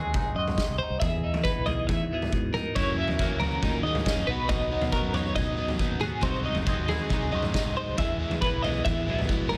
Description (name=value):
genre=math rock and midwest emo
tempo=138 BPM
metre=4/4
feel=straight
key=E lydian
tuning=A4 = 440 Hz
part: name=twelve-string electric guitar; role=accompaniment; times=0.0-9.6 s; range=E2 to G#4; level=-37 LUFS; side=equal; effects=phaser
part: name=twelve-string electric guitar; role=arpeggios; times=0.0-9.6 s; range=G#4 to E5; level=-33 LUFS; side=equal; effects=tremolo
part: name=fingered electric bass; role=bass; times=0.0-9.6 s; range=F#1 to E3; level=-35 LUFS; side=equal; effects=none
part: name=loose indie drum kit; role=drums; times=0.1-9.6 s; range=kick drum, snare drum, toms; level=-31 LUFS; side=equal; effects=none
part: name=overdriven electric guitar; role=riff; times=2.8-9.6 s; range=F#2 to E4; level=-35 LUFS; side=equal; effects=none
room=little or no reverb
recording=none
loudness=-27 LUFS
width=mono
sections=0.0-9.6 A section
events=none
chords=0.0 G#7; 1.0 Emaj7; 2.8 F#13; 4.3 B; 6.2 G#7; 8.0 Emaj7